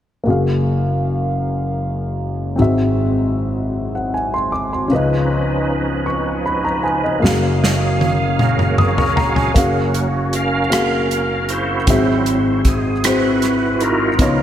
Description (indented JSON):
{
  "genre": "slow gospel",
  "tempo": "52 BPM (dotted quarters)",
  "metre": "6/8",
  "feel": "straight",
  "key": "F# major",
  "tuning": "A4 = 441 Hz",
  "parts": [
    { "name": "dark concert grand piano", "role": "accompaniment", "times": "0.2-14.4 s", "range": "F#1 to D#6", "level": "-17 LUFS", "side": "left 1 dB", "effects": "none" },
    { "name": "mellow French horn section", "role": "sustained chords", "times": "0.3-9.5 s", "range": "E#3 to E#5", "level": "-28 LUFS", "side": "right 3 dB", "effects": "none" },
    { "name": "bright tonewheel organ", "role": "sustained chords", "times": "4.9-14.4 s", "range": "F#2 to E#5", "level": "-20 LUFS", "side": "right 3 dB", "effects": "fast rotary speaker, chorus vibrato" },
    { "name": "natural country drum kit", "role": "drums", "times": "7.3-14.4 s", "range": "hi-hat, kick drum, rim click, snare drum, toms", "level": "-18 LUFS", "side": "equal", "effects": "gated reverb" }
  ],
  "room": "moderate lush hall reverb, RT60 2.7 s",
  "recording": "bright 1980s-style digital production",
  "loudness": "-15 LUFS",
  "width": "side -10 dB against mid",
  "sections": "0.3-9.6 A section; 9.6-14.4 B section",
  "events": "drum fill 7.2-9.6; tonewheel organ solo 9.6-14.4",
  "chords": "0.3 F#maj9; 2.6 G#aug7; 4.9 C#9; 7.2 F#maj9; 11.9 G#7alt",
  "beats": "| 0.27 1.43 | 2.59 3.75 | 4.91 6.07 | 7.23 8.39 | 9.55 10.71 | 11.87 13.03 | 14.19"
}